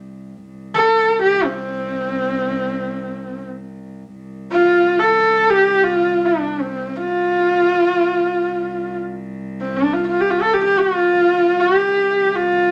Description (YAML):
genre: mongolian traditional, Mongolian folk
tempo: free time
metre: none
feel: none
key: C zhi mode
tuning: A4 = 442 Hz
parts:
  - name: warm cello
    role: drone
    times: 0.0-12.7 s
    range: C2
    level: -33 LUFS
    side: equal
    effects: none
  - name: clear horsehead fiddle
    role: melody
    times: 0.7-12.7 s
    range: C4 to A4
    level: -17 LUFS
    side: equal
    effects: none
room: wet studio reverb, RT60 0.6 s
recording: none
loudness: -17 LUFS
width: mono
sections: 0.0-4.1 A section; 4.1-12.7 A section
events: none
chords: none